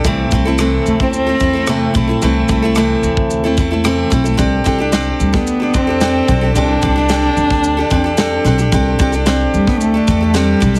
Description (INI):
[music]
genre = acoustic pop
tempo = 111 BPM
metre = 4/4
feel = straight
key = unclear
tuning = A4 = 445 Hz
[part]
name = picked steel-string acoustic guitar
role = accompaniment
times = 0.0-10.8 s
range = C3 to A4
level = -18 LUFS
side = equal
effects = none
[part]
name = upright bass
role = bass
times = 0.0-10.8 s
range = B1 to E2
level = -20 LUFS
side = equal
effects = none
[part]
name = modern studio drum kit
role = drums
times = 0.0-10.8 s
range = kick drum, rim click, shaker, snare drum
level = -22 LUFS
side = equal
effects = none
[part]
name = dark cello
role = melody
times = 0.9-10.8 s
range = G3 to D4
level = -19 LUFS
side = equal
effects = none
[sound]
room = light reverb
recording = heavily compressed radio sound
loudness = -14 LUFS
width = mono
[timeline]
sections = 0.0-10.8 A section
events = none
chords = 0.0 Am; 4.4 Gsus2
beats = | 0.05 0.59 1.13 1.67 | 2.22 2.76 3.30 3.84 | 4.39 4.93 5.47 6.01 | 6.55 7.10 7.64 8.18 | 8.72 9.26 9.81 10.35